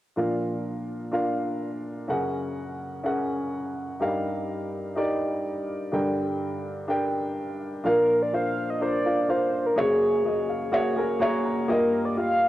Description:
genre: pop.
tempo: 125 BPM.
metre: 4/4.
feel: straight.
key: Bb major.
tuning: A4 = 441 Hz.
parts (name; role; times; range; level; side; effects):
warm upright piano; accompaniment; 0.2-12.5 s; Gb2 to Bb5; -26 LUFS; equal; cassette tape.
mellow horn-like synth lead; melody; 7.9-12.5 s; Ab4 to F5; -24 LUFS; equal; chorus, cassette tape.
room: moderate lush hall reverb, RT60 3.0 s.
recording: home recording on cassette.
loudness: -24 LUFS.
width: side -14 dB against mid.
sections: 0.2-7.9 A section; 7.9-12.5 B section.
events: upright piano fill 10.3-11.7.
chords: 0.2 Bb; 2.1 Gbadd9; 4.0 Ebadd9/G; 5.9 Gm; 7.9 Bb; 9.8 Gbadd9; 11.7 Ebadd9/G.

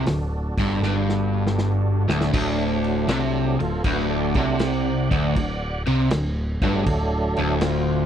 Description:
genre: blues rock power trio and southern rock.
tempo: 79 BPM.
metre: 4/4.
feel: swing 68% on 8ths.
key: D mixolydian.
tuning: A4 = 441 Hz.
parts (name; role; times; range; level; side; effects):
overdriven tonewheel organ; sustained chords; 0.0-8.1 s; F#3 to F#5; -29 LUFS; right 2 dB; chorus vibrato, stopped rotary speaker.
crunchy overdriven guitar; riff; 0.0-8.1 s; D2 to C3; -22 LUFS; equal; none.
growling picked electric bass; bass; 0.0-8.1 s; D1 to C2; -27 LUFS; equal; overdrive.
vintage drum kit; drums; 0.1-7.9 s; crash cymbal, hi-hat, kick drum, snare drum; -28 LUFS; equal; none.
room: studio reverb.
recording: dry, close 1970s-style studio recording.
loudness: -20 LUFS.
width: side -9 dB against mid.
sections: 0.0-2.3 A section; 2.3-8.1 B section.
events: drum fill 0.8-2.3; tonewheel organ solo 2.3-8.1.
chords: 0.0 D.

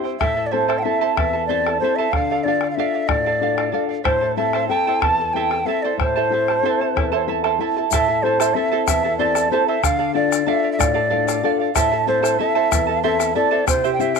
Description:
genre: andean folk, Andean ensemble.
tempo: 62 BPM (dotted quarters).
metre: 6/8.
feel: straight.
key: A minor.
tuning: A4 = 440 Hz.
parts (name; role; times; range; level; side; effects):
charango; accompaniment; 0.0-14.2 s; E4 to A5; -22 LUFS; right 12 dB; none.
nylon-string guitar; accompaniment; 0.0-14.2 s; E2 to A4; -24 LUFS; left 12 dB; none.
bombo; percussion; 0.1-14.2 s; none; -23 LUFS; left 2 dB; none.
bright large quena; melody; 0.2-14.2 s; C5 to A5; -21 LUFS; left 1 dB; none.
egg shaker; percussion; 7.9-14.2 s; none; -27 LUFS; left 20 dB; none.
room: light reverb.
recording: 1960s-style stereo with parts hard left and right.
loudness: -17 LUFS.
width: side -5 dB against mid.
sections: 0.0-7.9 A section; 7.9-14.2 A section.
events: none.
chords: 0.2 Am; 2.1 Dm; 4.1 Am; 9.8 Dm; 11.8 Am; 13.7 C.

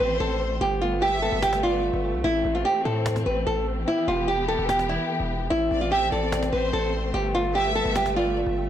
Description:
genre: hip hop, trap.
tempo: 147 BPM.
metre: 4/4.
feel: half-time.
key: A minor.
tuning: A4 = 440 Hz.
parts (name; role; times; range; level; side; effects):
nylon-string guitar; melody; 0.0-8.7 s; E4 to B4; -24 LUFS; right 1 dB; low-pass filter, tape echo.
warm symphonic violin section; second line; 0.0-1.8, 5.7-8.4 s; C5 to E5; -31 LUFS; left 2 dB; tape echo.
dark symphonic string section; sustained chords; 0.0-8.7 s; E3 to G4; -31 LUFS; left 2 dB; none.
distorted 808-style bass; bass; 0.0-8.7 s; E1 to A2; -29 LUFS; equal; distortion.
cajon; drums; 1.4-8.7 s; none; -33 LUFS; equal; none.
room: light reverb, studio reverb.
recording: blown-out, overdriven recording, overdrive.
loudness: -22 LUFS.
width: side -10 dB against mid.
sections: 0.0-8.7 A section.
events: break 0.0-5.5.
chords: 0.0 Am; 0.6 Gadd9; 2.2 Am; 3.9 Em; 5.5 Am; 7.1 Gadd9.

